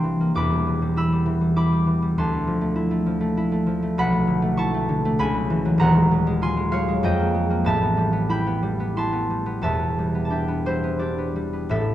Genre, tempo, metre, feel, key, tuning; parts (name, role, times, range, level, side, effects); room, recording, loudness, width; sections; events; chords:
classical, solo harp piece; 84-102 BPM; 3/4; rubato; D dorian; A4 = 439 Hz
concert harp; solo; 0.0-11.9 s; D#1 to E6; -20 LUFS; equal
wet recital hall reverb, RT60 1.4 s; dark, warm production; -20 LUFS; side -12 dB against mid
0.0-11.7 A section
0.3 Em7; 2.2 Dm9; 4.0 Bm11; 5.2 C#m7; 5.8 D#m11; 7.0 Fm11; 7.6 Am9; 9.6 Em7